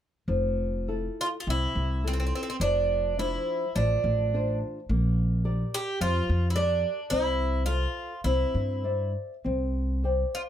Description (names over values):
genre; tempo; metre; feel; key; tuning
fado-style ballad; 105 BPM; 4/4; uneven beats, rubato; F major; A4 = 440 Hz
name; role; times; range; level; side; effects
flamenco guitar; accompaniment; 0.3-10.5 s; C3 to G5; -31 LUFS; left 2 dB; none
upright bass; bass; 0.3-10.2 s; F1 to G2; -27 LUFS; equal; none
Irish bouzouki; melody; 1.2-10.4 s; C4 to G4; -29 LUFS; right 3 dB; none
room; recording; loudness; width
little or no reverb; close, detailed microphones; -25 LUFS; side -10 dB against mid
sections
0.3-10.5 A section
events
none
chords
0.3 Fmaj7; 2.6 Dm7/F; 4.9 Bb6; 7.1 F/C; 8.2 Cadd9; 9.5 Csus2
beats
| 0.28 0.88 1.47 2.04 | 2.60 3.17 3.75 4.33 | 4.89 5.45 6.00 6.56 | 7.11 7.67 8.24 8.84 | 9.45 10.05